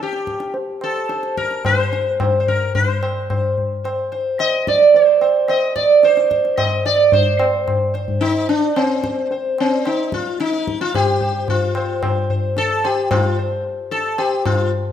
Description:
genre	indian classical, Hindustani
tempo	110 BPM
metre	4/4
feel	straight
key	C raga bhimpalasi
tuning	A4 = 441 Hz
part	sitar	melody	0.0-14.7 s	C4 to Eb5	-17 LUFS	right 2 dB	none
part	tabla	percussion	0.1-14.7 s	none	-21 LUFS	left 1 dB	none
room	moderate recital hall reverb, RT60 1.5 s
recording	none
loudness	-15 LUFS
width	side -9 dB against mid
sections	0.0-7.1 A section; 7.1-14.9 B section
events	none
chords	none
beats	| 0.54 1.09 1.64 2.19 | 2.74 3.29 3.84 4.39 | 4.94 5.49 6.04 6.58 | 7.13 7.67 8.22 8.77 | 9.31 9.85 10.40 10.94 | 11.48 12.03 12.57 13.11 | 13.65 14.19

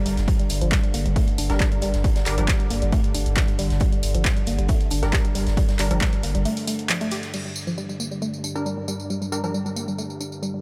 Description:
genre	driving peak-time techno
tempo	136 BPM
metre	4/4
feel	straight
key	G minor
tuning	A4 = 440 Hz
part	analog drone	drone	0.0-10.6 s	G2 to D3	-35 LUFS	equal	chorus, sidechain pumping
part	woody wave-folded pluck	riff	0.1-10.6 s	F3 to G4	-31 LUFS	equal	chorus, sidechain pumping, digital delay
part	saturated sub bass	bass	0.1-6.5 s	G1	-26 LUFS	equal	overdrive, sidechain pumping, low-pass filter
part	oversized low-tuned drum kit	drums	0.1-7.3 s	hi-hat, snare drum	-42 LUFS	equal	none
part	punchy analog drum machine	drums	0.1-10.5 s	crash cymbal, handclaps, hi-hat, tambourine	-31 LUFS	equal	none
part	electronic kick drum	drums	0.3-6.1 s	none	-24 LUFS	equal	none
part	rave stab	stabs	1.5-9.5 s	G3 to Bb4	-34 LUFS	equal	chorus, built-in reverb, sidechain pumping, dub echo
room	digital ambience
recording	none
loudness	-23 LUFS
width	mono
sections	0.0-7.3 A section; 7.3-10.6 B section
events	break 6.5-7.3; band accent 6.9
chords	0.0 Gm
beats	| 0.28 0.72 1.16 1.60 | 2.04 2.48 2.92 3.37 | 3.81 4.25 4.69 5.13 | 5.57 6.01 6.46 6.90 | 7.34 7.78 8.22 8.66 | 9.10 9.54 9.98 10.43

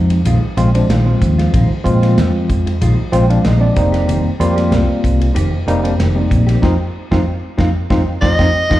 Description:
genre	electric jazz fusion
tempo	94 BPM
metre	4/4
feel	swing 53% on 16ths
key	Bb mixolydian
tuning	A4 = 439 Hz
part	tine electric piano	accompaniment	0.0-8.8 s	F3 to G5	-18 LUFS	equal	fast stereo tremolo
part	fingered electric bass	bass	0.0-8.8 s	F1 to Bb2	-14 LUFS	equal	none
part	mellow electric guitar	stabs	0.1-8.8 s	Eb3 to G4	-23 LUFS	right 1 dB	lush chorus, slapback echo
part	modern studio drum kit	drums	0.1-8.8 s	hi-hat, kick drum, ride cymbal, snare drum	-20 LUFS	equal	none
part	breathy soprano saxophone	melody	8.2-8.8 s	Eb5	-14 LUFS	equal	none
room	light reverb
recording	live gig heard through the venue's PA, club reverb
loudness	-12 LUFS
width	side -15 dB against mid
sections	0.0-8.8 A section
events	tine electric piano fill 2.8-4.1; band accent 6.6-8.8; drum fill 7.9-8.8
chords	0.0 Bb9sus4; 3.8 F9sus4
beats	0.25 0.89 | 1.53 2.17 2.81 3.45 | 4.08 4.72 5.36 5.99 | 6.63 7.26 7.90 8.53

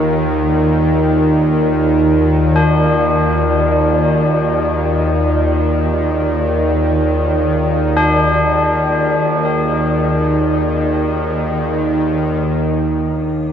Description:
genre	dark ambient drone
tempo	free time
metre	none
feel	none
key	unclear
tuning	A4 = 440 Hz
part	dark analog pad	sustained chords	0.0-13.5 s	Eb3 to Bb5	-22 LUFS	equal	chorus
part	tubular bells	arpeggios	0.0-13.5 s	D4	-20 LUFS	left 1 dB	ping-pong delay
part	bowed-like drone	drone	0.0-13.5 s	Eb2 to Eb3	-14 LUFS	equal	built-in reverb
part	icy glass pad	texture	12.9-13.5 s	D4 to D6	-40 LUFS	left 7 dB	none
room	wet huge ambient reverb, RT60 7.0 s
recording	worn, warbling old tape, cassette tape, warbly pitch drift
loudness	-13 LUFS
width	side -8 dB against mid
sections	0.0-12.5 A section; 12.5-13.5 B section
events	fade-out on analog synth pad 0.0-12.5; filter sweep on synth drone 12.5-13.5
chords	0.0 Bb/Eb; 12.5 Ebmaj7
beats	free time

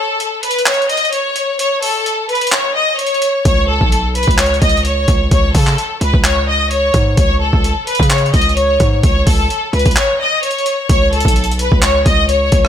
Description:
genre	hip hop, trap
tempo	129 BPM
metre	4/4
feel	half-time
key	unclear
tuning	A4 = 440 Hz
part	clear studio violin section	melody	0.0-12.7 s	A4 to D#5	-15 LUFS	left 1 dB	none
part	breakbeat sampler-style drum kit	drums	0.2-12.7 s	handclaps, hi-hat, kick drum, rim click	-15 LUFS	equal	none
part	hard-hitting 808-style bass	bass	3.5-12.7 s	B1 to C#3	-16 LUFS	equal	none
room	digital ambience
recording	none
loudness	-11 LUFS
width	side -9 dB against mid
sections	0.0-10.9 A section; 10.9-12.7 B section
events	break 0.0-3.5, 10.0-10.9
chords	0.0 N.C.; 3.5 C#5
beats	0.20 0.66 1.13 | 1.59 2.06 2.52 2.99 | 3.45 3.92 4.38 4.85 | 5.31 5.78 6.24 6.71 | 7.17 7.64 8.10 8.57 | 9.04 9.50 9.96 10.43 | 10.89 11.36 11.82 12.29

